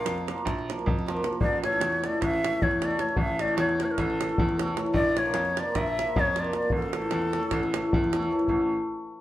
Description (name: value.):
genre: balkan folk, Balkan wedding band.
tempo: 305 BPM (eighths).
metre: 9/8.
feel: straight.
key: unclear.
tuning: A4 = 444 Hz.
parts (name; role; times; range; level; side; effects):
breathy bright ney; melody; 0.0-8.1 s; A4 to F5; -28 LUFS; left 1 dB; none.
cimbalom; accompaniment; 0.0-8.7 s; E3 to Bb4; -28 LUFS; equal; none.
clear baby grand piano; bass; 0.0-8.7 s; A1 to F2; -33 LUFS; right 1 dB; none.
davul; percussion; 0.1-8.7 s; none; -30 LUFS; equal; none.
room: wet large studio reverb, RT60 0.8 s.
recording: band playing live in one room.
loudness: -24 LUFS.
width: side -14 dB against mid.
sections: 0.0-8.5 A section.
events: none.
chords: 0.0 Bb; 1.4 A; 4.9 Bb; 6.7 A.